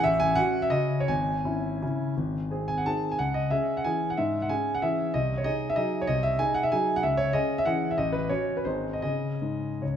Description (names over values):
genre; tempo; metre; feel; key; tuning
classical, piano waltz; 147-202 BPM; 3/4; rubato; C# minor; A4 = 439 Hz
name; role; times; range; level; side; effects
dark concert grand piano; solo; 0.0-10.0 s; G#1 to A5; -24 LUFS; equal; none
room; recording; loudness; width
wet recital hall reverb, RT60 1.7 s; none; -24 LUFS; side -9 dB against mid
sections
0.0-10.0 A section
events
none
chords
0.1 F#m/A; 1.1 C#m/G#; 2.2 G#; 3.2 C#m; 5.2 G#7/B#; 7.0 C#m; 8.0 F#m/A; 8.7 G#; 9.0 C#5